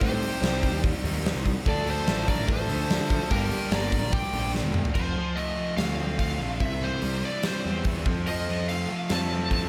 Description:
classic rock; 145 BPM; 4/4; straight; A4 = 440 Hz
lead guitar through a small cranked amp; melody; 0.0-9.7 s; Bb4 to A5; -35 LUFS; equal; overdrive, digital delay
octave-fuzz lead guitar; second line; 0.0-4.5 s; G4 to D5; -38 LUFS; equal; distortion
dark upright piano; accompaniment; 0.0-4.4 s; Bb3 to A5; -41 LUFS; equal
crunchy overdriven guitar; riff; 0.0-9.7 s; G2 to F4; -36 LUFS; equal
overdriven electric guitar; riff; 0.0-9.7 s; G2 to D4; -38 LUFS; equal
fuzz picked electric bass; bass; 0.0-9.7 s; E1 to D3; -32 LUFS; equal; overdrive
big rock drum kit; drums; 0.0-9.6 s; crash cymbal, hi-hat, kick drum, snare drum, toms; -31 LUFS; equal
light reverb; -27 LUFS; mono
0.0-5.0 A section; 5.0-9.7 B section
drum fill 4.5-5.0; half time 5.0-9.7
0.0 Cm; 1.7 Dm; 3.3 Gmadd9; 5.0 F; 6.6 C; 8.1 F

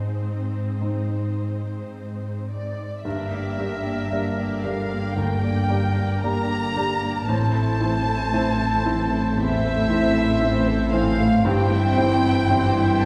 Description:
cinematic; 57 BPM; 4/4; rubato; G dorian; A4 = 440 Hz
warm symphonic violin section; melody; 0.0-13.0 s; C5 to Bb5; -31 LUFS; equal
felt-muted upright piano; accompaniment; 0.0-13.1 s; D2 to A5; -30 LUFS; equal
rich symphonic viola section; accompaniment; 0.0-13.1 s; E3 to Eb4; -33 LUFS; equal
rich symphonic cello section; bass; 0.0-13.1 s; G2 to A2; -28 LUFS; equal
hollow flute section; second line; 2.5-13.0 s; D5 to Bb5; -34 LUFS; equal
mellow French horn section; sustained chords; 3.0-13.1 s; D3 to C4; -33 LUFS; equal
clear oboe; second line; 3.1-13.1 s; Bb4 to C5; -36 LUFS; equal
dark clarinet; second line; 3.1-13.1 s; D4 to E4; -34 LUFS; equal
warm symphonic violin section; second line; 3.1-13.1 s; E4 to E5; -37 LUFS; equal
warm symphonic double bass section; bass; 3.1-13.1 s; G1 to A1; -29 LUFS; equal
wet scoring stage reverb, RT60 1.8 s; heard from further back in the room; -22 LUFS; mono
0.0-3.1 A section; 3.1-13.1 A section
0.0 Ab; 3.1 Gm; 7.3 Am; 11.4 C/G

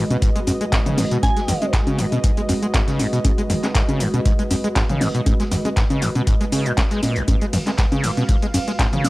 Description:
acid house; 119 BPM; 4/4; swing 54% on 16ths; G# dorian; A4 = 440 Hz
dark analog pad; sustained chords; 0.0-9.1 s; G#3 to E#5; -26 LUFS; right 1 dB; chorus, sidechain pumping
overdriven acid bass; riff; 0.0-9.1 s; G#1 to G#3; -22 LUFS; equal; ensemble chorus, tape echo
electro analog drum machine; drums; 0.1-9.1 s; cabasa, congas, handclaps, hi-hat, ride cymbal, toms; -23 LUFS; equal
electronic kick drum; drums; 0.2-8.9 s; -20 LUFS; equal
warm soul drum kit; drums; 0.2-9.1 s; hi-hat, snare drum; -36 LUFS; equal
soft synth bell; melody; 1.2-1.6 s; G#5; -27 LUFS; right 2 dB; chorus, analog delay
light reverb; dry, gritty hardware recording, transformer saturation, cassette tape; -17 LUFS; side -20 dB against mid
0.0-9.1 A section
0.0 G#m7

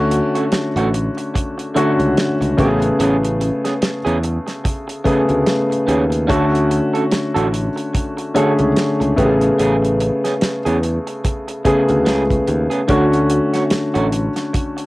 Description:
lush 1970s-style soul; 73 BPM; 4/4; swing 58% on 16ths; A major; A4 = 440 Hz
warm concert grand piano; accompaniment; 0.0-14.9 s; C#3 to G#4; -17 LUFS; left 1 dB; cassette tape
modern bright fingered electric bass; bass; 0.0-14.3 s; A1 to E2; -20 LUFS; equal
electric guitar through a small old amp; riff; 0.1-14.8 s; A3 to A4; -22 LUFS; right 3 dB; cassette tape
damped 70s drum kit; drums; 0.1-14.9 s; hi-hat, kick drum, snare drum; -22 LUFS; right 1 dB; cassette tape
little or no reverb; home recording on cassette; -15 LUFS; side -19 dB against mid
0.0-14.9 A section
0.0 Dmaj7; 2.6 Amaj9; 6.3 Dmaj7; 9.2 Amaj9; 12.9 Dmaj7

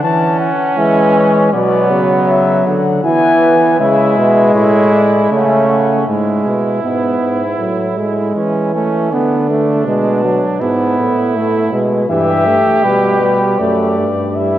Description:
classical, imitative canzona for brass ensemble; 79 BPM; 4/4; straight; A4 = 441 Hz
dark trumpet; melody; 0.0-6.1, 12.1-14.6 s; B4 to A5; -17 LUFS; left 5 dB
warm flugelhorn; second line; 0.0-14.6 s; B3 to G4; -19 LUFS; right 2 dB
clear trombone; accompaniment; 0.0-14.6 s; E3 to B3; -15 LUFS; right 1 dB
clear bass trombone; bass; 0.8-14.6 s; F#2 to E3; -16 LUFS; right 1 dB
wet church reverb, RT60 3.1 s; worn, warbling old tape, cassette tape, warbly pitch drift; -11 LUFS; side -12 dB against mid
0.0-6.1 A section; 6.1-14.6 B section
0.0 A/E; 1.5 Bm; 3.0 E; 4.6 A; 6.1 E/G#; 7.6 A; 9.1 Bm/D; 10.6 E/G#; 12.1 Em/G

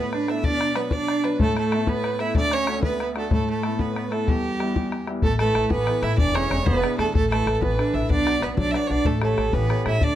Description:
celtic folk, Celtic jig; 125 BPM (dotted quarters); 6/8; straight; A4 = 438 Hz
clear fiddle; melody; 0.0-10.2 s; G4 to E5; -26 LUFS; right 3 dB
rich cello; second line; 0.0-10.2 s; G3 to E4; -27 LUFS; right 4 dB
clear baby grand piano; accompaniment; 0.0-10.2 s; D2 to D5; -27 LUFS; left 2 dB
bodhran; percussion; 0.1-10.1 s; -25 LUFS; left 2 dB
upright bass; bass; 5.2-10.2 s; E1 to A2; -25 LUFS; equal
moderate studio reverb, RT60 0.5 s; -20 LUFS; side -12 dB against mid
0.0-5.2 A section; 5.2-10.2 A section
0.4 Bm; 1.4 Asus2; 2.4 D; 3.3 Asus2; 4.3 Em; 5.2 Asus2; 6.2 E7; 7.1 Asus2; 8.1 Bm; 9.1 A7

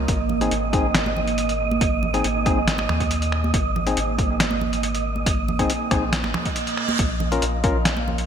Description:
deep dubstep; 139 BPM; 4/4; half-time; A4 = 440 Hz
dark analog pad; sustained chords; 0.0-8.3 s; Bb3; -30 LUFS; right 6 dB; chorus
soft dub sub bass; bass; 0.0-8.3 s; Ab1 to Eb2; -26 LUFS; left 1 dB
wind-like tuned noise texture; texture; 0.0-8.3 s; Eb5 to F5; -27 LUFS; right 5 dB; built-in reverb
electronic kick drum; drums; 0.1-7.7 s; -24 LUFS; equal; overdrive
trip hop sampler-style drum kit; drums; 0.1-8.3 s; finger snaps, hi-hat, snare drum; -25 LUFS; left 1 dB; overdrive, gated reverb
congas; percussion; 0.3-8.2 s; -31 LUFS; right 3 dB; dub echo
percussive organ stab; stabs; 0.4-7.8 s; C4 to Bb4; -27 LUFS; left 4 dB; chorus, dub echo
reverse cymbal; sound effects; 6.4-7.0 s; -29 LUFS; right 4 dB
moderate lush hall reverb, RT60 2.2 s; bright 1980s-style digital production; -19 LUFS; side -8 dB against mid
0.0-8.3 A section
reverse cymbal 6.4-7.0
0.1 Ab; 7.0 Bbm

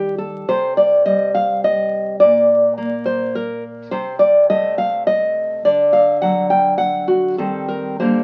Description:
romantic piece for solo classical guitar; 104 BPM; 3/4; rubato; A4 = 440 Hz
nylon-string guitar; solo; 0.0-8.2 s; Bb2 to G5; -17 LUFS; equal
moderate studio reverb, RT60 0.5 s; very old 78 rpm record, vinyl crackle; -17 LUFS; mono
0.0-8.2 A section
0.5 Cm; 2.2 N.C.; 3.9 Adim/C; 5.6 D; 7.4 Cm/Eb

